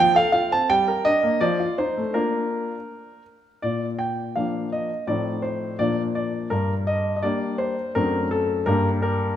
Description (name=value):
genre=classical-period piano sonatina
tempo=83 BPM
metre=2/4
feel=straight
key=Bb major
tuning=A4 = 438 Hz
part: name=warm grand piano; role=solo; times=0.0-9.4 s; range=F#2 to A5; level=-20 LUFS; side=equal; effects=none
room=wet recital hall reverb, RT60 1.8 s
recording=none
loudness=-21 LUFS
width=side -10 dB against mid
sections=0.0-3.6 A section; 3.6-9.4 B section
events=none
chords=0.0 F; 0.7 Gm; 1.4 F7; 2.2 Bb; 5.1 F7/A; 5.8 Bb; 6.5 Gm; 8.0 D7/F#; 8.7 Gm